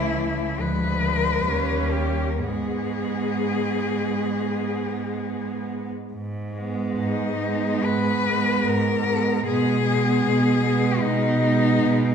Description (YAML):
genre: classical, lyrical piece for cello ensemble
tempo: 62-78 BPM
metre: 4/4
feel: rubato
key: G# minor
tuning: A4 = 440 Hz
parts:
  - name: rich cello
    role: melody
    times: 0.0-12.1 s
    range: D#4 to B4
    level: -25 LUFS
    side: left 4 dB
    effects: none
  - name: rich cello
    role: second line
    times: 0.0-12.1 s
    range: Ab3 to C#4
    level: -28 LUFS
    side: right 5 dB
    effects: none
  - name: rich cello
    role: accompaniment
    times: 0.0-12.1 s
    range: E3 to G#3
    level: -27 LUFS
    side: right 2 dB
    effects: none
  - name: rich cello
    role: bass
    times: 0.0-12.1 s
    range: C#2 to B2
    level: -26 LUFS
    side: right 1 dB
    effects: none
room: wet recital hall reverb, RT60 1.4 s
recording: heard from further back in the room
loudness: -21 LUFS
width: side -7 dB against mid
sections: 0.0-6.1 A section; 6.1-12.1 B section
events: none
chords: 0.0 A/C#; 0.6 Ddim7; 1.5 D#7; 2.4 G#m; 9.5 G#m/B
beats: 0.60 1.47 | 2.39 3.34 4.31 5.24 | 6.13 6.97 7.85 8.67 | 9.46 10.24 11.03 11.82